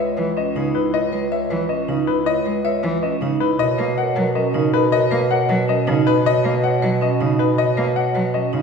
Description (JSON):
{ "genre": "classical, minimalist pattern music", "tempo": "316 BPM (eighths)", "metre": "7/8", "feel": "straight", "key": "unclear", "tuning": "A4 = 441 Hz", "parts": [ { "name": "clear grand piano", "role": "melody", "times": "0.0-8.6 s", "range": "B4 to F#5", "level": "-22 LUFS", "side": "left 8 dB", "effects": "none" }, { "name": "dark French horn", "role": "second line", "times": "0.0-0.7, 3.6-6.0 s", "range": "A#4 to B4", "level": "-27 LUFS", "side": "right 1 dB", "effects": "none" }, { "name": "vibraphone with hard mallets", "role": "arpeggios", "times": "0.0-8.6 s", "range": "C#4 to C#5", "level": "-23 LUFS", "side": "right 6 dB", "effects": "none" }, { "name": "warm bass clarinet", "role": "bass", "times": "0.0-8.6 s", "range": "C#2 to B2", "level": "-23 LUFS", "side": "right 1 dB", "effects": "none" }, { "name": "rich cello", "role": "accompaniment", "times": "0.2-8.6 s", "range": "C#3 to A#3", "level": "-26 LUFS", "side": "right 1 dB", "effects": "none" } ], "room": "wet scoring stage reverb, RT60 1.6 s", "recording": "heard from further back in the room", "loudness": "-17 LUFS", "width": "side -5 dB against mid", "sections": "0.0-8.6 A section", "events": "none", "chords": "0.0 C#m7; 3.6 Bmaj7" }